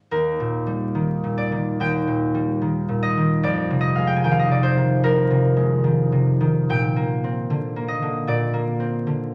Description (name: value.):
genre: classical, solo harp piece.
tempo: 67-78 BPM.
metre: 4/4.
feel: rubato.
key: Eb major.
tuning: A4 = 442 Hz.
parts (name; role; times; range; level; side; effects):
concert harp; solo; 0.0-9.3 s; Eb2 to Ab5; -21 LUFS; equal; none.
room: wet recital hall reverb, RT60 1.5 s.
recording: vinyl crackle.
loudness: -21 LUFS.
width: mono.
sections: 0.1-9.3 A section.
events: none.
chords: 0.1 Ebmaj7; 3.4 Fm11; 6.7 Bb13.